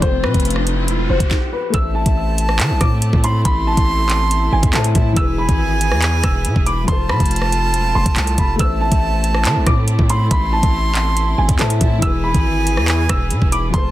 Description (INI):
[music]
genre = hip hop, drill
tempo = 140 BPM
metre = 4/4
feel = half-time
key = A harmonic minor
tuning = A4 = 438 Hz
[part]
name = dark upright piano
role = melody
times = 0.0-13.9 s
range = B4 to E6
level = -24 LUFS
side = left 1 dB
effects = low-pass filter, digital delay
[part]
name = felt-muted upright piano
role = accompaniment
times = 0.0-13.9 s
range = E3 to E5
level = -26 LUFS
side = left 5 dB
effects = low-pass filter
[part]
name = clear symphonic string section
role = sustained chords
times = 0.0-13.9 s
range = E3 to B4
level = -26 LUFS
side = right 1 dB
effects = none
[part]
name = distorted 808-style bass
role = bass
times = 0.0-13.9 s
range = E1 to E3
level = -18 LUFS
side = equal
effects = distortion
[part]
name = drill drum kit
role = drums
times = 0.0-13.8 s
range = handclaps, hi-hat, kick drum, rim click, snare drum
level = -18 LUFS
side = equal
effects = none
[part]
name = riser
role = sound effects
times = 0.1-1.3 s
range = none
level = -27 LUFS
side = right 1 dB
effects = none
[part]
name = breathy silver concert flute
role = second line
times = 1.7-13.9 s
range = G#5 to C6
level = -23 LUFS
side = right 3 dB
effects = digital delay
[sound]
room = little or no reverb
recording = dense, heavily limited modern master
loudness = -14 LUFS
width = side -14 dB against mid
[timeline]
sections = 0.0-1.7 A section; 1.7-13.9 B section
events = riser 0.1-1.7; stop 1.3-1.7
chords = 0.0 F; 1.7 Am; 5.2 E; 6.9 F; 8.6 Am; 12.0 E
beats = | 0.02 0.45 0.88 1.31 | 1.74 2.17 2.60 3.02 | 3.45 3.88 4.31 4.74 | 5.17 5.59 6.02 6.45 | 6.88 7.31 7.74 8.17 | 8.60 9.02 9.45 9.88 | 10.31 10.74 11.17 11.60 | 12.02 12.45 12.88 13.31 | 13.74